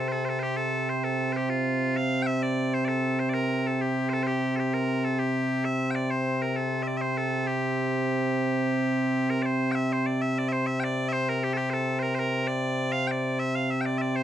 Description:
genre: celtic folk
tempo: 131 BPM (dotted quarters)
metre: 12/8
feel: straight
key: C mixolydian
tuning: A4 = 440 Hz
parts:
  - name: loud bright bagpipes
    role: solo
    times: 0.0-14.2 s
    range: C3 to G5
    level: -24 LUFS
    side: equal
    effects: none
room: light reverb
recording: dark, warm production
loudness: -24 LUFS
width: side -10 dB against mid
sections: 0.0-9.3 A section; 9.3-14.2 B section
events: none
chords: none

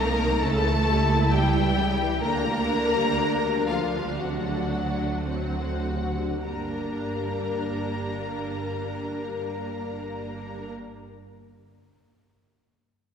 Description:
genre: classical, slow romantic movement for string orchestra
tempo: 49-70 BPM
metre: 4/4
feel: rubato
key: G minor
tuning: A4 = 440 Hz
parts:
  - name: clear symphonic violin section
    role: melody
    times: 0.0-10.7 s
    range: F5 to Bb5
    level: -31 LUFS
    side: left 4 dB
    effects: none
  - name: warm symphonic violin section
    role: second line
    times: 0.0-10.7 s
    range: F4 to Bb4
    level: -31 LUFS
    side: left 4 dB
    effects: none
  - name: rich symphonic viola section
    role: accompaniment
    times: 0.0-10.7 s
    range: C3 to E4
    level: -31 LUFS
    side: equal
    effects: none
  - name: rich chamber double bass section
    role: bass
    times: 0.0-10.7 s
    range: G1 to D2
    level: -29 LUFS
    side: right 2 dB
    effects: none
  - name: rich symphonic cello section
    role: bass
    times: 0.0-10.7 s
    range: F3 to Bb3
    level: -32 LUFS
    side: right 3 dB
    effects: none
room: wet concert hall reverb, RT60 2.3 s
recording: heard from further back in the room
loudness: -24 LUFS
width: side -7 dB against mid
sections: 0.0-6.4 A section; 6.4-10.8 B section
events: slowing down 0.0-6.4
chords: 0.4 C#dim7; 2.2 Gm/D; 4.2 D7; 6.4 Gm

